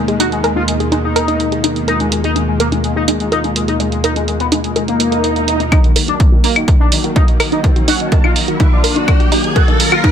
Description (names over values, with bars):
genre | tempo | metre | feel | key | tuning
melodic techno | 125 BPM | 4/4 | straight | Eb minor | A4 = 442 Hz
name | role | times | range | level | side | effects
resonant sweep polysynth | melody | 0.0-10.1 s | Eb3 to Gb4 | -19 LUFS | left 3 dB | chorus, sidechain pumping, digital delay
warm analog pad | sustained chords | 0.0-10.1 s | Eb2 to Gb4 | -20 LUFS | equal | chorus, vintage 12-bit sampler grit, sidechain pumping
bowed-like drone | drone | 0.0-10.1 s | Eb3 to Bb3 | -27 LUFS | equal | built-in reverb, sidechain pumping
wide unison pluck | arpeggios | 0.1-10.1 s | Eb4 to Cb5 | -20 LUFS | right 1 dB | sidechain pumping, ping-pong delay
electronic hi-hat and claves | drums | 0.1-10.1 s | none | -18 LUFS | right 3 dB | none
swell and riser | sound effects | 4.9-10.1 s | none | -21 LUFS | right 2 dB | none
electronic kick drum | drums | 5.7-10.1 s | none | -12 LUFS | equal | none
room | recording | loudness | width
light reverb | none | -12 LUFS | side -8 dB against mid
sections
0.0-5.7 A section; 5.7-10.1 B section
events
swell 4.9-5.7; build-up 5.7-10.1; riser 5.7-10.1; filter sweep on synth arpeggio sound 5.7-10.1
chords
0.0 Abmadd9/Eb; 5.7 Ebm